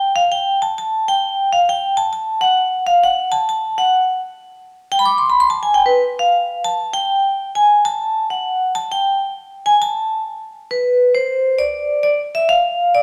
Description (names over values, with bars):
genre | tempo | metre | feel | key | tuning
jazz | 133 BPM | 3/4 | swing 67% on 8ths | unclear | A4 = 440 Hz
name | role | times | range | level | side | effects
vibraphone with medium hard mallets | solo | 0.0-13.0 s | B4 to D6 | -17 LUFS | equal | none
room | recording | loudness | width
moderate recital hall reverb, RT60 1.7 s | recorded in a church or concert hall | -17 LUFS | mono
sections
0.0-10.7 A section; 10.7-13.0 B section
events
vibraphone solo 0.0-10.7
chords
none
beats
0.28 0.73 | 1.18 1.64 2.09 | 2.54 2.99 3.45 | 3.90 4.35 4.80 | 5.26 5.71 6.16 | 6.61 7.07 7.52 | 7.97 8.42 8.87 | 9.32 9.78 10.23 | 10.68 11.13 11.58 | 12.04 12.49 12.94